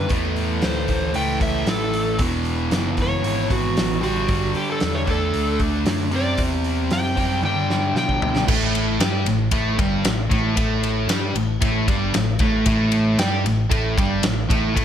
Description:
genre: blues rock power trio and southern rock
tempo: 115 BPM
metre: 4/4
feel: straight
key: unclear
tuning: A4 = 438 Hz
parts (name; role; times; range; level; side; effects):
- overdriven slide guitar; melody; 0.0-8.5 s; F#4 to G5; -25 LUFS; equal; digital delay
- overdriven electric guitar; riff; 0.0-14.8 s; E2 to G4; -22 LUFS; equal; none
- overdriven picked electric bass; bass; 0.0-14.8 s; E1 to B2; -25 LUFS; equal; none
- big rock drum kit; drums; 0.1-14.8 s; crash cymbal, hi-hat, kick drum, ride cymbal, snare drum, toms; -24 LUFS; equal; none
room: light reverb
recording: none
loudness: -18 LUFS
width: side -9 dB against mid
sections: 0.0-8.5 A section; 8.5-14.8 B section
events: drum fill 7.4-8.5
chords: 0.1 A; 2.2 E; 4.0 G5; 5.1 D; 6.1 C; 7.4 G; 8.5 Gsus2

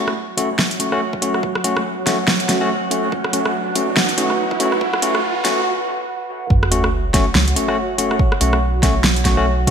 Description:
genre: deep dubstep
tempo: 142 BPM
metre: 4/4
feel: swing 58% on 16ths, half-time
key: F# minor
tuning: A4 = 438 Hz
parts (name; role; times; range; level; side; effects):
- dark analog pad; sustained chords; 0.3-9.7 s; F#4 to F#5; -26 LUFS; right 2 dB; chorus
- barky tine electric piano; stabs; 0.0-9.7 s; A3 to F#4; -20 LUFS; left 2 dB; dub echo
- riser and sub drop; sound effects; 0.0-8.2 s; none; -27 LUFS; right 2 dB; none
- wind-like tuned noise texture; texture; 0.3-5.7 s; F#3 to F#4; -30 LUFS; right 4 dB; built-in reverb
- deep house drum kit; drums; 0.1-9.7 s; hi-hat, rim click, snare drum; -20 LUFS; right 1 dB; none
- electronic kick drum; drums; 0.4-9.7 s; none; -18 LUFS; right 1 dB; high-pass filter on kick
- soft dub sub bass; bass; 6.5-9.7 s; F#1 to C#2; -19 LUFS; right 1 dB; none
room: wet lush hall reverb, RT60 1.7 s, digital ambience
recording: bright 1980s-style digital production, high-pass filter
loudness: -16 LUFS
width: side -7 dB against mid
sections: 0.0-6.5 A section; 6.5-9.7 B section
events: build-up 0.0-6.5; riser 0.0-5.7; break 5.7-6.5; drop 6.5-9.7; impact 6.5-8.2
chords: 0.0 F#m

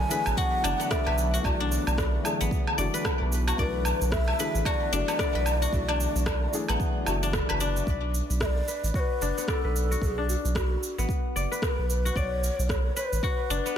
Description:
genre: organic downtempo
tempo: 112 BPM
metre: 4/4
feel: swing 59% on 16ths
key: B dorian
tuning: A4 = 440 Hz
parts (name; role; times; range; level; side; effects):
- breathy mellow low ney; melody; 0.0-13.8 s; F#4 to G#5; -32 LUFS; left 2 dB; tape echo
- felt-muted upright piano; accompaniment; 0.0-7.9 s; E3 to G#4; -34 LUFS; left 4 dB; sidechain pumping, tape echo
- warm analog pad; sustained chords; 0.0-7.8 s; D3 to B3; -39 LUFS; right 1 dB; chorus, tremolo, sidechain pumping
- guzheng; arpeggios; 0.0-13.8 s; B3 to D5; -32 LUFS; left 4 dB; low-pass filter, tape echo
- warm sub bass; bass; 0.0-13.6 s; F#1 to B1; -28 LUFS; right 1 dB; tube saturation, sidechain pumping
- electronic cabasa, woodblock and rim click; drums; 0.1-13.7 s; none; -32 LUFS; right 1 dB; overdrive
- electronic kick drum; drums; 0.4-13.4 s; none; -31 LUFS; right 1 dB; none
room: light reverb, small room ambience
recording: dense, heavily limited modern master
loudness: -24 LUFS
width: side -9 dB against mid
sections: 0.0-7.9 A section; 7.9-13.8 B section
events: filter sweep on guzheng 7.9-13.8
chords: 0.0 Bm

